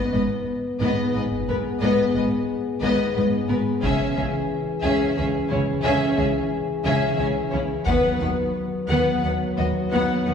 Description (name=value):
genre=cinematic, epic orchestral film score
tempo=59 BPM (dotted quarters)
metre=6/8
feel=straight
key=G# minor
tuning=A4 = 439 Hz
part: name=rich symphonic violin section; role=melody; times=0.0-10.3 s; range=B4 to F#5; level=-30 LUFS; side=left 4 dB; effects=none
part: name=rich symphonic violin section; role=second line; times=0.0-10.3 s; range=E4 to B4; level=-28 LUFS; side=left 3 dB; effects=none
part: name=rich symphonic viola section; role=accompaniment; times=0.0-10.3 s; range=B3 to C#4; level=-28 LUFS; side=right 1 dB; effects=none
part: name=mellow French horn section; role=sustained chords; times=0.0-10.3 s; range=E3 to B4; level=-26 LUFS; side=left 4 dB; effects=none
part: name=rich studio double bass section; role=bass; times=0.1-10.3 s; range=G#1 to D#2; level=-29 LUFS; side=right 2 dB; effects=none
part: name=rich symphonic cello section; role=bass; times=0.1-10.3 s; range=G#2 to D#3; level=-28 LUFS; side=right 2 dB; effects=none
part: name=taiko ensemble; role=drums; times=1.3-9.2 s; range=none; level=-32 LUFS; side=equal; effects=none
room=wet scoring stage reverb, RT60 2.1 s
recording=heard from further back in the room, small room ambience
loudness=-20 LUFS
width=side -7 dB against mid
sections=0.0-10.3 A section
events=build-up 0.0-10.3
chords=0.0 G#m; 3.8 C#m; 7.9 B/D#